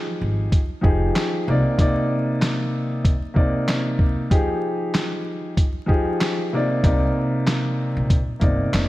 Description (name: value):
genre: hip hop, boom-bap hip-hop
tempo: 95 BPM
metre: 4/4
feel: swing 55% on 16ths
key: F minor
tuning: A4 = 440 Hz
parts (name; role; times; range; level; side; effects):
- dark baby grand piano; accompaniment; 0.0-8.9 s; C3 to D5; -22 LUFS; equal; cassette tape, high-pass filter, low-pass filter
- upright bass; bass; 0.2-1.6, 6.8-8.9 s; F1 to C2; -23 LUFS; equal; none
- lo-fi sampler-style drum kit; drums; 0.5-8.9 s; handclaps, hi-hat, kick drum, snare drum; -21 LUFS; equal; none
room: moderate plate reverb, RT60 1.9 s, small room ambience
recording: dreamy mix soaked in reverb, vinyl crackle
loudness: -19 LUFS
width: side -17 dB against mid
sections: 0.0-8.9 A section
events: none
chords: 0.0 Fm9; 1.5 Cm9; 4.3 Fm9; 6.5 Cm9